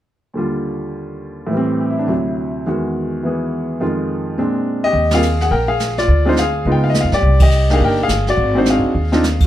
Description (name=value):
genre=jazz piano trio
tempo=210 BPM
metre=4/4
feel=swing 62% on 8ths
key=Eb major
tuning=A4 = 440 Hz
part: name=clear baby grand piano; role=melody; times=0.3-9.5 s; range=D2 to G5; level=-17 LUFS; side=equal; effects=plate reverb
part: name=upright bass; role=bass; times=4.9-9.5 s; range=G1 to G2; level=-16 LUFS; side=equal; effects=none
part: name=jazz brush drum kit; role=drums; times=4.9-9.5 s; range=brushed snare drum, hi-hat, kick drum, ride cymbal, snare drum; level=-20 LUFS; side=right 1 dB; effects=none
room=light reverb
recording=dark, warm production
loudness=-14 LUFS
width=side -12 dB against mid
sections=0.4-4.9 A section; 4.9-9.5 B section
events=band accent 5.1, 7.4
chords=0.4 Ebmaj9; 1.5 Am7; 2.1 D9; 2.6 Emaj9; 3.8 Fm7; 4.4 Bb9; 4.9 Ebadd9; 6.1 Dm7b5; 6.7 Db9; 7.2 Cm9; 8.4 Ab7#11